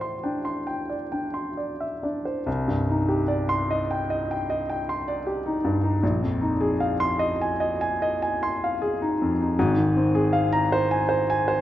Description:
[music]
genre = classical, impressionist solo piano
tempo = 43-54 BPM (dotted quarters)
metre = 9/8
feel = rubato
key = C minor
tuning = A4 = 440 Hz
[part]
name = warm grand piano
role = solo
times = 0.0-11.6 s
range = Ab1 to C6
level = -22 LUFS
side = equal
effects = none
[sound]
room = wet recital hall reverb, RT60 1.5 s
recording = nothing above 7.8 kHz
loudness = -22 LUFS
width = side -13 dB against mid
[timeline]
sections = 0.0-2.5 A section; 2.5-11.6 B section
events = none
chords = 0.0 Am7; 2.5 Cmadd9; 6.0 Bb9sus4; 9.6 Ab69

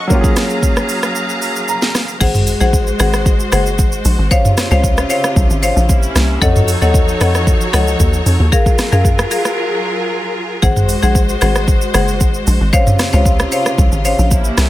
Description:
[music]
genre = amapiano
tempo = 114 BPM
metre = 4/4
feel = straight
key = Db major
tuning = A4 = 439 Hz
[part]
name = clear baby grand piano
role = accompaniment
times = 0.0-2.2 s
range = Gb3 to Bb5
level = -19 LUFS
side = right 1 dB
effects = none
[part]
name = bright studio string section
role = sustained chords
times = 0.0-14.7 s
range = C3 to Bb5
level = -20 LUFS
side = right 1 dB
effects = sidechain pumping
[part]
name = afro-pop drum kit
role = drums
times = 0.1-14.7 s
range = crash cymbal, hi-hat, kick drum, rim click, shaker, snare drum, toms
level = -15 LUFS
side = equal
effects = none
[part]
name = marimba with hard mallets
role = stabs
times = 2.2-14.1 s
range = Ab4 to Gb5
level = -18 LUFS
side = left 4 dB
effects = digital delay
[part]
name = hollow log drum bass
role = bass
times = 2.2-14.7 s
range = Gb1 to Gb2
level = -15 LUFS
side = equal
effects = none
[sound]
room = little or no reverb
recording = none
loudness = -11 LUFS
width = side -15 dB against mid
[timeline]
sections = 0.0-2.2 A section; 2.2-14.7 B section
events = break 1.2-2.2, 9.6-10.6; grand piano fill 1.4-2.2; drop 2.2-14.7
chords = 0.1 Gbmaj9; 2.2 Ab7; 4.3 Dbmaj7; 5.9 C7b9; 6.4 F7b9b13; 8.5 Gbmaj9; 10.6 Ab7; 12.7 Dbmaj7

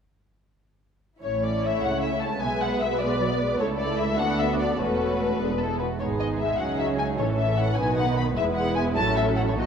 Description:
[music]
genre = quick classical-period movement for string orchestra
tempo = 101 BPM (dotted quarters)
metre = 6/8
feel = straight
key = A major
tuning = A4 = 440 Hz
[part]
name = muted studio violin section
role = melody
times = 1.2-9.7 s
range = A4 to B5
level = -27 LUFS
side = left 4 dB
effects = none
[part]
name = muted symphonic violin section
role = second line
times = 1.2-9.7 s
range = C#4 to E5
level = -29 LUFS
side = left 1 dB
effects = none
[part]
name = muted symphonic viola section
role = accompaniment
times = 1.2-9.7 s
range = D#3 to E4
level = -29 LUFS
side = right 2 dB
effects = none
[part]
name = muted symphonic cello section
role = bass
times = 1.2-9.7 s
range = C#2 to C#3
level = -30 LUFS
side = right 2 dB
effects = none
[part]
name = muted symphonic double bass section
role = bass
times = 1.2-9.7 s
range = E1 to D2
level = -31 LUFS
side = right 3 dB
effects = none
[sound]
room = wet scoring stage reverb, RT60 2.0 s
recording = faint mains hum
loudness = -22 LUFS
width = side -7 dB against mid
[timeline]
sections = 1.2-9.7 A section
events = none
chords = 1.2 A; 2.4 G#dim/B; 3.6 A/C#; 4.2 D; 4.8 Esus4; 5.4 E; 6.0 G#m; 6.6 C#5; 7.2 A6; 7.8 B; 8.4 E; 9.0 F#m/A

